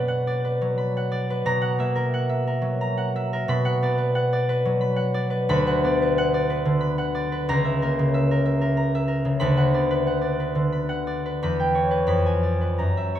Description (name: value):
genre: classical, solo harp piece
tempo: 90 BPM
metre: 3/4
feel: uneven beats, rubato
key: B minor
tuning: A4 = 442 Hz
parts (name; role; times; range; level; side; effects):
- concert harp; solo; 0.0-13.2 s; C#2 to B5; -20 LUFS; equal; none
room: wet concert hall reverb, RT60 1.8 s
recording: none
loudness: -20 LUFS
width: side -11 dB against mid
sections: 0.0-13.2 A section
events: none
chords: 0.0 Bm; 1.4 F#7/B; 3.5 Bm; 5.5 Bm/D; 7.5 A#dim/C#; 9.4 Bm/D; 11.4 C#m7b5/E; 12.1 Fdim7